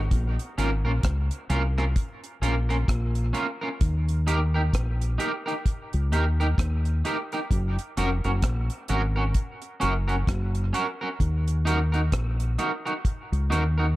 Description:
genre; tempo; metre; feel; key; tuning
dub reggae; 65 BPM; 4/4; swing 59% on 16ths; Bb minor; A4 = 440 Hz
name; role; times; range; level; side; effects
fingered electric bass; bass; 0.0-14.0 s; F1 to Eb2; -24 LUFS; equal; none
deep reggae drum kit; drums; 0.1-13.8 s; hi-hat, kick drum, rim click; -27 LUFS; equal; none
electric guitar at the edge of break-up; accompaniment; 0.6-13.9 s; Db4 to Bb4; -29 LUFS; right 2 dB; analog chorus, dub echo
room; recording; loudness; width
small room reverb; none; -23 LUFS; side -17 dB against mid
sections
0.1-14.0 A section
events
none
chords
0.1 Bbm; 3.8 Eb; 7.5 Gb; 11.2 Ebm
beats
| 0.11 1.03 1.96 2.88 | 3.81 4.73 5.66 6.58 | 7.50 8.43 9.36 10.28 | 11.20 12.13 13.05

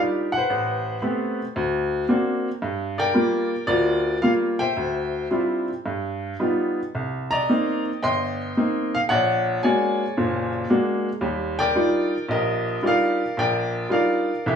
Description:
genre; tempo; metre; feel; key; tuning
solo jazz; 112 BPM; 4/4; swing 69% on 8ths, rubato; Eb major; A4 = 440 Hz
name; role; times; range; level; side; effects
bright upright piano; solo; 0.0-14.6 s; F#1 to C6; -20 LUFS; equal; none
room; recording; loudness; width
light reverb; small room reverb; -20 LUFS; side -7 dB against mid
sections
0.0-14.6 A section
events
none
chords
0.5 Am9; 1.6 D7b13; 2.6 Gm7; 4.8 Dm11; 5.8 G7b13; 6.9 Cm9; 9.1 Bb7alt; 11.2 Ebmaj9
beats
| 0.49 1.03 1.56 2.09 | 2.62 3.15 3.68 4.22 | 4.75 5.30 5.84 6.39 | 6.94 7.49 8.04 8.57 | 9.11 9.64 10.17 10.70 | 11.23 11.76 12.29 12.83 | 13.37 13.91 14.46

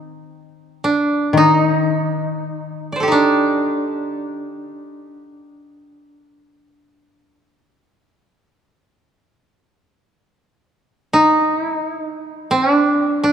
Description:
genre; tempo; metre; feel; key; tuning
japanese traditional, Japanese chamber music; free time; none; none; unclear; A4 = 438 Hz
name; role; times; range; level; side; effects
koto; melody; 0.0-13.3 s; D4 to D5; -16 LUFS; right 1 dB; none
koto; accompaniment; 0.0-4.7 s; Eb3 to C4; -20 LUFS; left 4 dB; none
room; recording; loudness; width
wet church reverb, RT60 2.9 s; dark, warm production; -15 LUFS; side -8 dB against mid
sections
0.0-13.3 A section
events
none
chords
none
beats
free time

